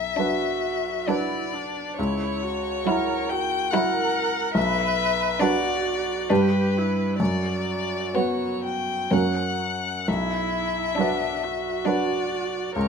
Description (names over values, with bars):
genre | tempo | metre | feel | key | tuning
classical, slow romantic movement for piano quintet | 61-72 BPM | 3/4 | rubato | B minor | A4 = 440 Hz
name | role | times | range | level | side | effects
rich violin | melody | 0.0-12.9 s | B4 to G5 | -27 LUFS | left 8 dB | none
clear grand piano | accompaniment | 0.0-12.9 s | B1 to B4 | -26 LUFS | right 1 dB | none
rich cello | second line | 0.2-12.5 s | F#3 to G3 | -30 LUFS | right 10 dB | none
warm violin | second line | 0.2-12.5 s | A#3 to E4 | -30 LUFS | left 2 dB | none
rich viola | accompaniment | 0.2-12.9 s | D4 to B4 | -29 LUFS | right 7 dB | none
room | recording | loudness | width
light reverb | close, detailed microphones | -22 LUFS | side -6 dB against mid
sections
0.0-12.9 A section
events
none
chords
0.0 Bm; 2.0 F#7/C#; 4.6 Bm; 6.3 G; 7.2 F#sus4; 9.1 F#; 10.1 Bm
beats
0.18 1.08 | 1.98 2.87 3.73 | 4.56 5.41 6.30 | 7.20 8.15 9.12 | 10.07 10.98 11.86 | 12.76